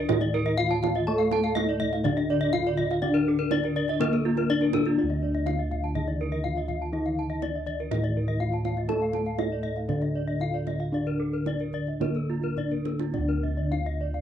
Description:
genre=Balinese gamelan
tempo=104-123 BPM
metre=4/4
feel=straight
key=D pelog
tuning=A4 = 440 Hz
part: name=gamelan-type bronze metallophone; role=melody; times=0.0-14.2 s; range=Bb3 to A4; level=-30 LUFS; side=left 2 dB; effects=none
part: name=gamelan-type bronze metallophone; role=accompaniment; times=0.0-14.2 s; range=D3 to Bb3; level=-35 LUFS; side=left 1 dB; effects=none
part: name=gamelan-type bronze metallophone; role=arpeggios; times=0.0-14.1 s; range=F4 to A5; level=-34 LUFS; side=right 8 dB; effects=none
part: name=gamelan-type bossed gongs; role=bass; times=0.0-14.2 s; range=D2 to A4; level=-29 LUFS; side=equal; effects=none
part: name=gamelan-type bronze metallophone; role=arpeggios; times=0.1-14.2 s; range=A4 to A5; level=-32 LUFS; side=left 8 dB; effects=none
part: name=kendang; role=percussion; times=0.1-13.9 s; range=none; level=-34 LUFS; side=right 13 dB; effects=none
room=small room reverb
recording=dry, close 1970s-style studio recording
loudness=-24 LUFS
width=side -9 dB against mid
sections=0.0-13.1 A section; 13.1-14.2 B section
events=drum fill 12.4-13.1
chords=none

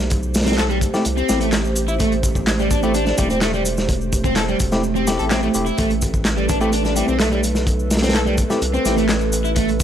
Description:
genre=breakbeat, breaks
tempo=127 BPM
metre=4/4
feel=straight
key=A minor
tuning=A4 = 439 Hz
part: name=dark analog pad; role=sustained chords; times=0.0-9.8 s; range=A3 to C5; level=-25 LUFS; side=right 2 dB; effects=chorus, sidechain pumping
part: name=saturated sub bass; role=bass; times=0.0-9.8 s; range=E1 to C2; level=-23 LUFS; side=equal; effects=none
part: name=crunchy breakbeat drum kit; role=drums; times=0.1-9.8 s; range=hi-hat, kick drum, snare drum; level=-21 LUFS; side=equal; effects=none
part: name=electronic shaker and handclaps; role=drums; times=0.1-9.8 s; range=none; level=-28 LUFS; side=equal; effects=none
part: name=overdriven semi-hollow guitar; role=riff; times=0.5-9.7 s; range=G3 to A4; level=-22 LUFS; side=right 1 dB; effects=vintage 12-bit sampler grit, tape echo
part: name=bell-like tine electric piano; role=stabs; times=0.9-9.0 s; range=A3 to G4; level=-25 LUFS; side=left 3 dB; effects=vintage 12-bit sampler grit, tape echo
room=small room reverb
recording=dry, gritty hardware recording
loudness=-16 LUFS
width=side -10 dB against mid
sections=0.0-9.8 A section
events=none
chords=0.0 Am7

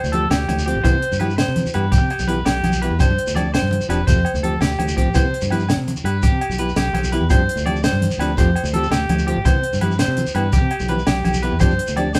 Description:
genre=highlife guitar band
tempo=112 BPM (dotted quarters)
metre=12/8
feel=straight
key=C major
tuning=A4 = 438 Hz
part: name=electric guitar at the edge of break-up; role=arpeggios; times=0.0-12.2 s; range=G4 to D5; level=-26 LUFS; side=equal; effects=none
part: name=fingered electric bass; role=bass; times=0.0-12.2 s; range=E1 to C3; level=-24 LUFS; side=equal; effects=none
part: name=congas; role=percussion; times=0.0-12.2 s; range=none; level=-29 LUFS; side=equal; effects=none
part: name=shekere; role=percussion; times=0.0-12.2 s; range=none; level=-31 LUFS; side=equal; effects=none
part: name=nylon-string guitar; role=accompaniment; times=0.1-12.1 s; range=E3 to G4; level=-28 LUFS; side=equal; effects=none
part: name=compact cocktail drum kit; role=drums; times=0.1-12.2 s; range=hi-hat, kick drum, snare drum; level=-22 LUFS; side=equal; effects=none
part: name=agogo bells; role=percussion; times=0.3-12.2 s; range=none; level=-33 LUFS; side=equal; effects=none
room=moderate studio reverb, RT60 0.8 s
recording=band playing live in one room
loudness=-19 LUFS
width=mono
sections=0.0-12.2 A section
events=none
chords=0.0 Fadd9; 0.8 Cmaj7; 3.0 G7sus4; 4.1 Fadd9; 5.2 Cmaj7; 7.3 G7sus4; 8.4 Fadd9; 9.5 Cmaj7; 11.6 G7sus4

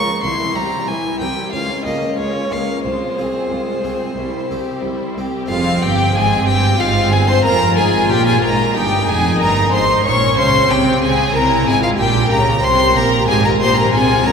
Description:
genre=classical, baroque-style concerto movement with solo episodes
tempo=92 BPM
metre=4/4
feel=straight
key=F minor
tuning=A4 = 440 Hz
part: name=clear violin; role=melody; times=0.0-14.3 s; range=C5 to Db6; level=-20 LUFS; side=left 1 dB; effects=none
part: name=rich chamber violin section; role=melody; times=0.0-14.3 s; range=G4 to Db6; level=-22 LUFS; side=left 2 dB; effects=none
part: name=rich chamber violin section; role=second line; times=0.0-14.3 s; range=Db4 to Db5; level=-21 LUFS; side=left 2 dB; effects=none
part: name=harpsichord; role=accompaniment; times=0.0-14.3 s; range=C2 to C5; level=-25 LUFS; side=equal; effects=none
part: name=rich chamber viola section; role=accompaniment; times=0.0-14.3 s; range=E3 to G4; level=-24 LUFS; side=left 2 dB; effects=none
part: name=rich chamber cello section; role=bass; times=0.2-14.3 s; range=C2 to Db3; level=-20 LUFS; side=right 2 dB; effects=none
part: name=warm chamber double bass section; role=bass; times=5.5-14.3 s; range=F1 to Db2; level=-22 LUFS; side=right 2 dB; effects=none
room=wet church reverb, RT60 3.1 s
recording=minimal, uncompressed stereo recording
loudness=-13 LUFS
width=side -6 dB against mid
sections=0.0-5.5 A section; 5.5-14.3 B section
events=none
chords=0.2 C; 1.5 Bbm/Db; 2.8 Fm/C; 4.2 C; 5.5 Fm; 8.1 Gdim; 10.7 C; 12.0 C7/Bb; 13.3 Fm/Ab

